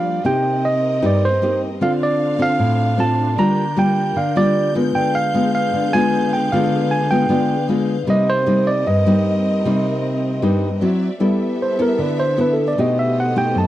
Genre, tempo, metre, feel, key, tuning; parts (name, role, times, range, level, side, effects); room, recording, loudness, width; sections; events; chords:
bossa nova; 153 BPM; 4/4; straight; A4 = 442 Hz
bright tine electric piano; melody; 0.0-13.7 s; A4 to Bb5; -20 LUFS; right 2 dB
nylon-string guitar; accompaniment; 0.0-13.7 s; F#2 to A4; -18 LUFS; left 1 dB
warm symphonic string section; sustained chords; 0.0-13.7 s; D3 to G6; -28 LUFS; right 1 dB
light reverb; dry, close 1970s-style studio recording; -15 LUFS; side -14 dB against mid
0.0-11.2 A section; 11.2-13.7 B section
tine electric piano solo 11.2-13.7
0.2 Cm7; 1.8 Dm7; 3.4 Bb6/D; 5.0 G7b9/D; 8.1 Cm7; 10.8 D9; 11.2 G69; 12.8 B7b9b13